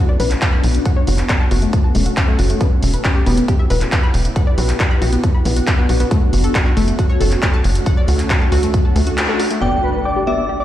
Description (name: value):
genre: uplifting trance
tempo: 137 BPM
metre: 4/4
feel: straight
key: B minor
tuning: A4 = 437 Hz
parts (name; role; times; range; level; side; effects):
- shimmering ambient pad; sustained chords; 0.0-10.6 s; A3 to G4; -23 LUFS; equal; chorus, built-in reverb, sidechain pumping
- analog pluck; arpeggios; 0.0-10.6 s; A3 to B5; -23 LUFS; left 2 dB; chorus, sidechain pumping, tape echo
- tight sequencer bass; bass; 0.2-10.6 s; E1 to D2; -17 LUFS; equal; sidechain pumping
- punchy analog drum machine; drums; 0.2-9.6 s; handclaps, hi-hat; -23 LUFS; equal; sidechain pumping on hats, low-pass filter on hats, low-pass filter on snare
- electronic kick drum; drums; 0.4-8.8 s; none; -16 LUFS; equal; none
- big supersaw lead; melody; 9.6-10.6 s; B4 to D5; -23 LUFS; right 1 dB; sidechain pumping, low-pass filter, tape echo
- glassy synth bell; second line; 9.6-10.6 s; E5 to G5; -21 LUFS; left 1 dB; chorus, dub echo
- plucky unison lead; second line; 9.6-10.6 s; B5 to D6; -27 LUFS; left 1 dB; sidechain pumping, tape echo
- impact; sound effects; 9.6-10.6 s; none; -24 LUFS; equal; none
room: moderate recital hall reverb, RT60 1.6 s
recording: played on a big sound system in a bare room, large studio reverb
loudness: -13 LUFS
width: side -12 dB against mid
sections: 0.0-9.6 A section; 9.6-10.6 B section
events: filter sweep on synth pluck 0.0-9.6; filter sweep on ambient pad 0.0-9.6, 9.6-10.6; band accent 9.2; impact 9.6-10.6; filter sweep on digital synth lead 9.6-10.6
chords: 0.0 Bm; 0.9 F#m; 2.6 Em; 4.4 Bm; 6.1 F#m; 7.9 D; 9.6 G